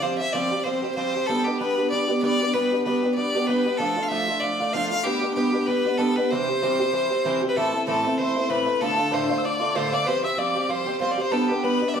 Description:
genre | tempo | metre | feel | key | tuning
celtic folk, Celtic reel | 191 BPM | 4/4 | swing 55% on 8ths | unclear | A4 = 441 Hz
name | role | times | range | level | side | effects
clear fiddle | melody | 0.0-12.0 s | G4 to F5 | -24 LUFS | left 1 dB | none
picked twelve-string acoustic guitar | accompaniment | 0.0-12.0 s | D2 to G4 | -24 LUFS | right 1 dB | none
bright reedy tin whistle | second line | 7.6-12.0 s | G5 to E6 | -28 LUFS | left 3 dB | none
room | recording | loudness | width
wet large studio reverb, RT60 1.0 s | band playing live in one room | -21 LUFS | side -7 dB against mid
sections
0.0-7.6 A section; 7.6-12.0 A section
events
none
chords
0.0 Fsus2; 1.3 G; 3.8 Dm/F; 5.0 G; 6.3 C; 7.6 Am; 8.8 Dm; 10.1 Fsus2; 11.3 G

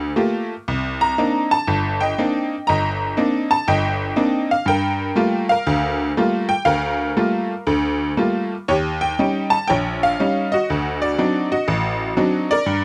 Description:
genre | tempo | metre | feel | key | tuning
solo jazz | 120 BPM | 4/4 | swing 67% on 8ths, rubato | G minor | A4 = 441 Hz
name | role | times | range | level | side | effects
tack piano | solo | 0.0-12.8 s | G1 to Bb5 | -20 LUFS | equal | none
room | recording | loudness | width
light reverb | close, detailed microphones | -20 LUFS | mono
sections
0.0-12.8 A section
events
none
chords
0.0 Gm9; 0.7 Cm9; 4.7 Gm9; 8.7 Eb7; 10.7 D7b9

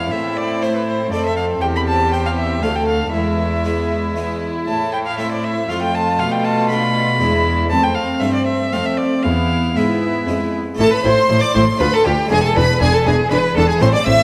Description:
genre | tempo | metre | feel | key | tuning
classical, baroque-style concerto movement with solo episodes | 118 BPM | 3/4 | straight | A minor | A4 = 445 Hz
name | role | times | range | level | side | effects
rich chamber violin section | melody | 0.0-14.2 s | G#4 to E6 | -30 LUFS | equal | none
rich violin | melody | 0.0-14.2 s | G4 to B5 | -23 LUFS | equal | none
rich chamber violin section | second line | 0.0-14.2 s | C4 to E5 | -24 LUFS | equal | none
harpsichord | accompaniment | 0.0-14.2 s | D2 to C5 | -28 LUFS | equal | none
rich studio viola section | accompaniment | 0.0-14.1 s | G#3 to F4 | -27 LUFS | equal | none
clear chamber cello section | bass | 0.0-14.2 s | D2 to B2 | -24 LUFS | equal | none
clear chamber double bass section | bass | 10.8-14.1 s | E1 to D2 | -23 LUFS | equal | none
room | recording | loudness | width
wet scoring stage reverb, RT60 1.6 s | none | -17 LUFS | mono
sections
0.0-10.8 A section; 10.8-14.2 B section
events
none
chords
0.1 Am; 1.1 F; 1.6 C/E; 2.6 Dm; 3.1 E; 4.7 Am; 5.7 F; 6.2 Bm7b5; 7.2 E7; 7.7 F; 9.2 E; 10.8 A5; 11.8 Dm; 12.3 E7

